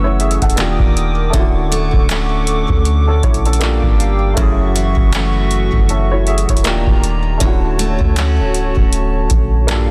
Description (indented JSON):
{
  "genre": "contemporary R&B",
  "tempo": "79 BPM",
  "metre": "4/4",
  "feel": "swing 58% on 16ths",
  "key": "unclear",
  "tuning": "A4 = 440 Hz",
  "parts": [
    { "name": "warm baby grand piano", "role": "accompaniment", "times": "0.0-9.9 s", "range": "A3 to F#5", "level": "-25 LUFS", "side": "equal", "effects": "none" },
    { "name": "hollow soft pad", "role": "sustained chords", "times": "0.0-9.9 s", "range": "A3 to E6", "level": "-25 LUFS", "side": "equal", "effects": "chorus, sidechain pumping" },
    { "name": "picked steel-string acoustic guitar", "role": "arpeggios", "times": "0.0-9.9 s", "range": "F#2 to F#4", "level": "-24 LUFS", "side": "equal", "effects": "delay" },
    { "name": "soft 808-style bass", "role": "bass", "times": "0.0-9.9 s", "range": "C#1 to D2", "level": "-19 LUFS", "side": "equal", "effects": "none" },
    { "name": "booming analog drum machine", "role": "drums", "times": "0.2-9.9 s", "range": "handclaps, hi-hat, kick drum", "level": "-18 LUFS", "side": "equal", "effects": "none" }
  ],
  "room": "little or no reverb",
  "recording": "dense, heavily limited modern master",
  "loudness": "-15 LUFS",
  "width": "mono",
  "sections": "0.0-9.9 A section",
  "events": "none",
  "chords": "0.0 F#m7; 0.6 D#maj7; 1.3 Dmaj7; 3.6 Gm7; 4.4 F#m7; 6.7 D#maj7; 7.4 Dmaj7"
}